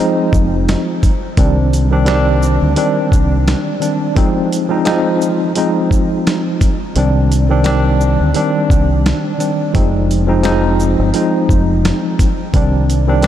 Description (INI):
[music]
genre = hip hop, boom-bap hip-hop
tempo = 86 BPM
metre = 4/4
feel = swing 55% on 16ths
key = C minor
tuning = A4 = 440 Hz
[part]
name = tine electric piano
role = accompaniment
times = 0.0-13.3 s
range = Eb3 to Eb4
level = -14 LUFS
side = equal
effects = overdrive, medium stereo tremolo
[part]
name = deep dub fingered electric bass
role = bass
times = 0.3-13.3 s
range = F1 to D2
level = -15 LUFS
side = equal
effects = none
[part]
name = dusty soul sampler-style drum kit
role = drums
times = 0.3-13.3 s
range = hi-hat, kick drum, shaker, snare drum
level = -18 LUFS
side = equal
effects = none
[sound]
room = moderate huge ambient reverb, RT60 8.3 s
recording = dreamy mix soaked in reverb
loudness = -12 LUFS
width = side -11 dB against mid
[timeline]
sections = 0.0-13.3 A section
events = kick muted 7.0-8.3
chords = 0.0 Fm7; 1.4 Cmadd9; 4.2 Fm7; 7.0 Cmadd9; 9.7 Fm7; 12.5 Cmadd9